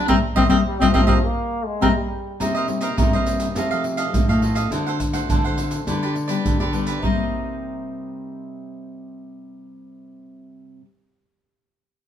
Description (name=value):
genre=samba and choro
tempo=104 BPM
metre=4/4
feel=straight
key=C minor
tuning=A4 = 441 Hz
part: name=clear clarinet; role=melody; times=0.0-1.9 s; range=C4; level=-21 LUFS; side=left 2 dB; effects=none
part: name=cavaquinho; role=accompaniment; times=0.0-10.9 s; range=D4 to F#5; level=-26 LUFS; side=right 4 dB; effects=none
part: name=nylon-string guitar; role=accompaniment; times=0.0-10.9 s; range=G2 to F#4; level=-26 LUFS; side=left 6 dB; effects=none
part: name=nylon-string guitar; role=bass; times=0.1-10.8 s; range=A2 to D3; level=-26 LUFS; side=equal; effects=none
part: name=surdo, maracas and pandeiro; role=percussion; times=0.1-7.2 s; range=none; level=-23 LUFS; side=right 1 dB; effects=none
part: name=warm trombone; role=second line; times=0.7-2.4 s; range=F3 to Bb3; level=-27 LUFS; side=left 1 dB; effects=none
room=moderate stone room reverb, RT60 1.0 s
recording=band playing live in one room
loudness=-18 LUFS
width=side -10 dB against mid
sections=0.0-2.4 A section; 2.4-7.0 B section; 7.0-9.3 C section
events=band accent 0.1-2.4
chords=0.1 Cm7; 3.6 F7/C; 4.7 D7; 5.9 G/D; 7.0 Cm7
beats=| 0.08 0.66 1.24 1.82 | 2.40 2.98 3.56 4.13 | 4.71 5.29 5.87 6.45 | 7.03 7.61 8.19 8.77